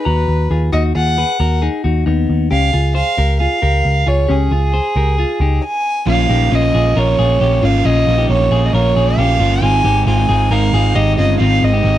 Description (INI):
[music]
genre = indie pop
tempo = 135 BPM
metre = 4/4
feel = straight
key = unclear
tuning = A4 = 440 Hz
[part]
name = warm violin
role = melody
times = 0.0-12.0 s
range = Ab4 to Ab5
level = -18 LUFS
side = right 1 dB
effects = slapback echo
[part]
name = clean electric guitar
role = arpeggios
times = 0.0-12.0 s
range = B3 to Bb5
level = -20 LUFS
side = left 5 dB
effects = slapback echo
[part]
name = vintage muted picked electric bass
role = bass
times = 0.1-12.0 s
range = G1 to D#2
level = -15 LUFS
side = equal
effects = none
[part]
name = crunchy overdriven guitar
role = accompaniment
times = 6.1-12.0 s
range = Ab2 to F4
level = -19 LUFS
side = right 8 dB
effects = none
[sound]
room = digital ambience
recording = dry, close 1970s-style studio recording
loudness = -12 LUFS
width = side -12 dB against mid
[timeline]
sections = 0.0-6.1 A section; 6.1-12.0 B section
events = stop 5.6-6.1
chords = 0.0 B6/D#; 2.5 Db6; 6.1 Bbm; 9.6 Ab